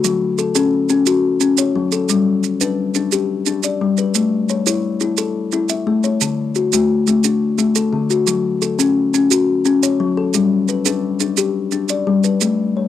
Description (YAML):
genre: southern african traditional, mbira-style interlocking cycle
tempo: 116 BPM (dotted quarters)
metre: 12/8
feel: straight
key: unclear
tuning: A4 = 439 Hz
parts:
  - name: kalimba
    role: arpeggios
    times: 0.0-12.9 s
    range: D3 to E5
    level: -15 LUFS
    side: left 4 dB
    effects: cassette tape
  - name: maracas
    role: percussion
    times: 0.0-12.6 s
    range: none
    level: -20 LUFS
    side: right 13 dB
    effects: none
room: moderate studio reverb, RT60 0.6 s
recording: home recording on cassette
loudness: -15 LUFS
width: side -11 dB against mid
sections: 0.0-12.4 A section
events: none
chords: 0.0 F#m; 2.1 G; 4.1 A; 6.2 D; 8.3 F#m; 10.3 G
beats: | 0.03 0.55 1.06 1.58 | 2.09 2.60 3.12 3.63 | 4.15 4.66 5.18 5.69 | 6.21 6.73 7.24 7.76 | 8.27 8.79 9.31 9.82 | 10.34 10.86 11.38 11.90 | 12.42